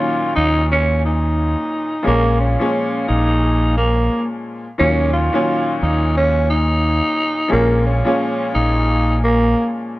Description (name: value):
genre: hip hop, boom-bap hip-hop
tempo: 88 BPM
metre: 4/4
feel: swing 58% on 16ths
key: Eb minor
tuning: A4 = 440 Hz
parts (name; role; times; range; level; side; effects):
- growling tenor saxophone; melody; 0.0-9.7 s; Bb3 to F4; -18 LUFS; right 1 dB; high-pass filter, low-pass filter, plate reverb
- clear upright piano; accompaniment; 0.0-10.0 s; Bb2 to Db4; -21 LUFS; left 1 dB; cassette tape, high-pass filter, low-pass filter
- deep dub fingered electric bass; bass; 0.4-9.5 s; Bb1 to Eb2; -18 LUFS; equal; none
room: light reverb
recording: none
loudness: -15 LUFS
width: side -18 dB against mid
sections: 0.0-10.0 A section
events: none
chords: 0.0 Ebm7; 2.1 Bbm7; 4.8 Ebm7; 7.5 Bbm7